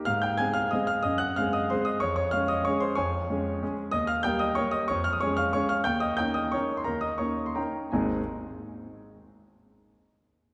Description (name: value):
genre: classical, piano waltz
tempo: 158-198 BPM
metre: 3/4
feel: rubato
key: Ab major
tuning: A4 = 440 Hz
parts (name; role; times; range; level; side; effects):
- clear concert grand piano; solo; 0.0-8.2 s; Ab1 to Ab6; -28 LUFS; equal; none
room: wet church reverb, RT60 3.0 s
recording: recorded in a church or concert hall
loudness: -28 LUFS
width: mono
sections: 0.0-7.9 A section; 7.9-9.0 B section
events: slowing down 5.4-7.9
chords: 0.1 Ab; 1.1 Ab7/Gb; 2.0 Db/F; 3.9 Eb; 4.9 Db/F; 5.9 Eb7; 7.9 Ab